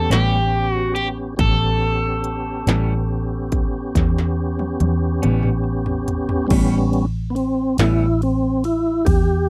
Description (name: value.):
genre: slow blues.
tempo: 47 BPM (dotted quarters).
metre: 12/8.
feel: straight.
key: A mixolydian.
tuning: A4 = 442 Hz.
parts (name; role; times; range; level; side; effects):
crunchy overdriven guitar; melody; 0.0-5.6 s; G4 to A4; -26 LUFS; equal; slapback echo.
tonewheel organ; sustained chords; 0.0-9.5 s; G3 to G4; -25 LUFS; equal; chorus vibrato, stopped rotary speaker.
vintage muted fingered electric bass; bass; 0.0-9.5 s; A1 to E2; -23 LUFS; equal; none.
clean electric guitar; accompaniment; 0.1-8.1 s; A2 to C#4; -26 LUFS; equal; harmonic tremolo.
industrial drum kit; drums; 0.1-9.3 s; crash cymbal, hi-hat, kick drum, ride cymbal, snare drum, toms; -24 LUFS; equal; none.
room: little or no reverb.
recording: dry, close 1970s-style studio recording.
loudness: -20 LUFS.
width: mono.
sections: 0.0-6.5 A section; 6.5-9.5 B section.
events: drum fill 4.0-6.5; tonewheel organ solo 6.5-9.5.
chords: 0.0 A9.